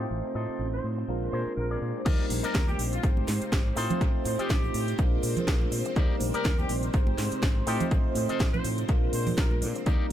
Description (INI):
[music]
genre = filtered disco house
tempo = 123 BPM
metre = 4/4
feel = swing 56% on 16ths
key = Eb major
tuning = A4 = 443 Hz
[part]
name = mellow horn section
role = melody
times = 0.0-9.6 s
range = F4 to C5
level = -38 LUFS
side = left 1 dB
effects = sidechain pumping, low-pass filter, dub echo
[part]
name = bright tine electric piano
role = accompaniment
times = 0.0-10.1 s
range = G3 to D5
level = -33 LUFS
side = right 1 dB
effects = phaser, sidechain pumping, low-pass filter, dub echo
[part]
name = string machine, full ensemble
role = sustained chords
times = 0.0-10.1 s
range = C4 to C5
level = -38 LUFS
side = equal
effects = ensemble chorus, sidechain pumping, low-pass filter
[part]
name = electric guitar with an envelope filter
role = riff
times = 0.0-10.1 s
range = Eb4 to Eb5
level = -40 LUFS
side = left 5 dB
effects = sidechain pumping, low-pass filter, dub echo
[part]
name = fingered electric bass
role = bass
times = 0.0-10.0 s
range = Ab1 to Bb2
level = -32 LUFS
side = equal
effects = sidechain pumping, low-pass filter
[part]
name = electronic kick drum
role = drums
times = 2.1-10.0 s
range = none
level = -25 LUFS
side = equal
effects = overdrive
[part]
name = house drum kit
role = drums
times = 2.1-10.0 s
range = crash cymbal, hi-hat, snare drum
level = -35 LUFS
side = equal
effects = sidechain pumping on hats, sidechain pumping on cymbals, dub echo
[part]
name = egg shaker and congas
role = percussion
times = 2.1-10.0 s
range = none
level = -36 LUFS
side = right 4 dB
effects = none
[sound]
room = light reverb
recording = echo-heavy mix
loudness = -25 LUFS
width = side -11 dB against mid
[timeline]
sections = 0.0-2.1 A section; 2.1-10.1 B section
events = drop 2.1-10.1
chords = 0.0 F7/A; 1.1 Bb7; 2.1 Ebmaj7; 3.0 Abmaj7; 3.8 F7/A; 5.0 Bb7; 6.0 Ebmaj7; 6.9 Abmaj7; 7.7 F7/A; 8.9 Bb7